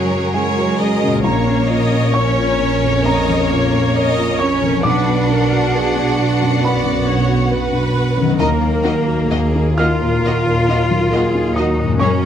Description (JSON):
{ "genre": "cinematic", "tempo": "67 BPM", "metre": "4/4", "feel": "rubato", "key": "Eb minor", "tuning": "A4 = 439 Hz", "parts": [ { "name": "rich studio violin section", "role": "melody", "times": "0.0-12.1 s", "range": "Bb4 to F#5", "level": "-24 LUFS", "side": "left 2 dB", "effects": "none" }, { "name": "rich studio violin section", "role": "second line", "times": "0.0-12.1 s", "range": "Bb3 to Bb4", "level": "-24 LUFS", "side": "equal", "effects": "none" }, { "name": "felt-muted upright piano", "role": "accompaniment", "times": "0.0-12.3 s", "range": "Bb1 to F6", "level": "-19 LUFS", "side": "left 1 dB", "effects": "none" }, { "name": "rich studio viola section", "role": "accompaniment", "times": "0.0-12.3 s", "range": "F#4 to Eb5", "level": "-23 LUFS", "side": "right 1 dB", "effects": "none" }, { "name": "concert harp", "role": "arpeggios", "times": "0.0-12.3 s", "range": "Gb2 to Db5", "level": "-25 LUFS", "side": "left 7 dB", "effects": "none" }, { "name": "rich studio cello section", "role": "bass", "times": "0.0-12.3 s", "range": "Gb3 to F4", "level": "-21 LUFS", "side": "right 2 dB", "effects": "none" }, { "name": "warm studio double bass section", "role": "bass", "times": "0.0-12.3 s", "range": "Bb1 to Gb2", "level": "-20 LUFS", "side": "right 3 dB", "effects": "none" } ], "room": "moderate recital hall reverb, RT60 1.6 s", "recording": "close, detailed microphones", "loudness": "-14 LUFS", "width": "side -9 dB against mid", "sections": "0.0-12.3 A section", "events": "none", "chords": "0.0 Gbadd9; 1.2 Bbm; 4.9 Bm; 8.4 Ebm" }